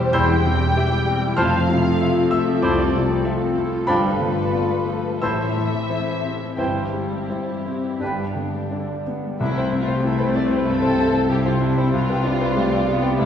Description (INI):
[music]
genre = classical, romantic movement for piano and orchestra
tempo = 83-99 BPM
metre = 4/4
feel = rubato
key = C major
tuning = A4 = 441 Hz
[part]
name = clear grand piano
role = melody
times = 0.0-13.3 s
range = C2 to G6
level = -22 LUFS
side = left 2 dB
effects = none
[part]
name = muted symphonic violin section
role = melody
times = 0.0-13.3 s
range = D4 to G5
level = -34 LUFS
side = left 2 dB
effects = none
[part]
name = muted studio violin section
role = second line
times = 0.0-13.3 s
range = D4 to G5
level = -27 LUFS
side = left 1 dB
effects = none
[part]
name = muted studio viola section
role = accompaniment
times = 0.0-13.3 s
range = C3 to F4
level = -28 LUFS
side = equal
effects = none
[part]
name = mellow French horn section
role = sustained chords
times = 0.0-9.1 s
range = G3 to F4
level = -27 LUFS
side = left 5 dB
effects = none
[part]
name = bright oboe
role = second line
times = 0.1-8.3 s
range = B4 to D5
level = -31 LUFS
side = right 3 dB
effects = none
[part]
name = mellow hollow flute section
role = second line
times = 0.1-8.3 s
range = G5 to A5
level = -33 LUFS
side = right 1 dB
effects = none
[part]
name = warm clarinet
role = second line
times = 0.1-8.3 s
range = D4 to E4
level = -30 LUFS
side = left 1 dB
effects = none
[part]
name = warm bassoon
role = accompaniment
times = 0.1-8.3 s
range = E3 to G3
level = -33 LUFS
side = right 1 dB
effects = none
[part]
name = muted studio cello section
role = bass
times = 0.1-13.3 s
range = C2 to C3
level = -27 LUFS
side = right 1 dB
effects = none
[part]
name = muted studio double bass section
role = bass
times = 0.1-13.3 s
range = E1 to C2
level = -28 LUFS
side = right 2 dB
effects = none
[part]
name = timpani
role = percussion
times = 9.4-10.3 s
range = C3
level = -31 LUFS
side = equal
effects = none
[sound]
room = wet scoring stage reverb, RT60 1.7 s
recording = heard from further back in the room, small room ambience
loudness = -18 LUFS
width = side -8 dB against mid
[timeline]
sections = 0.0-9.4 A section; 9.4-13.3 B section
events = none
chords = 0.0 C/E; 1.4 Fmaj7; 3.9 G9; 5.2 Am; 6.6 C/G; 8.0 G; 9.4 C; 11.9 G7/C